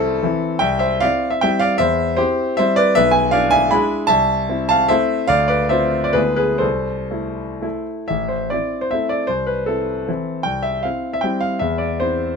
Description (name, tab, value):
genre	classical, romantic triple-time dance for piano with dotted rhythms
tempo	115-166 BPM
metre	3/4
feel	rubato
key	A minor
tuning	A4 = 440 Hz
part	clear concert grand piano	solo	0.0-12.4 s	A1 to B5	-16 LUFS	equal	none
room	light reverb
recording	close, detailed microphones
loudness	-16 LUFS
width	side -5 dB against mid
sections	0.0-8.1 A section; 8.1-12.4 B section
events	none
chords	0.0 Am/C; 0.6 C; 1.8 C/E; 3.0 E7/B; 4.1 Am/C; 5.3 Dm7; 6.2 E7/D; 6.6 Am/C; 8.1 Am; 9.3 Am/C; 10.5 C; 11.6 C/E